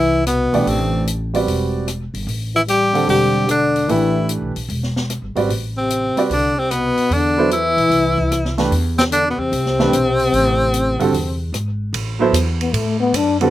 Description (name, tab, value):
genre	modal jazz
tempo	149 BPM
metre	4/4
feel	swing 66% on 8ths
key	A dorian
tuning	A4 = 440 Hz
part	breathy tenor saxophone	melody	0.0-11.5 s	B3 to G4	-18 LUFS	equal	none
part	breathy trombone	second line	0.0-13.5 s	B2 to D4	-21 LUFS	left 4 dB	slapback echo
part	upright bass	bass	0.0-13.5 s	E1 to A2	-22 LUFS	equal	none
part	open jazz drum kit	drums	0.3-13.5 s	hi-hat, kick drum, ride cymbal, rim click, snare drum	-27 LUFS	equal	none
part	clear baby grand piano	accompaniment	0.5-13.5 s	D3 to F#5	-19 LUFS	right 4 dB	none
room	little or no reverb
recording	recorded outdoors, with no room sound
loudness	-15 LUFS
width	side -14 dB against mid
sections	0.0-11.9 A section; 11.9-13.5 B section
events	trombone solo 11.9-13.5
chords	0.0 Am9; 11.9 Amadd9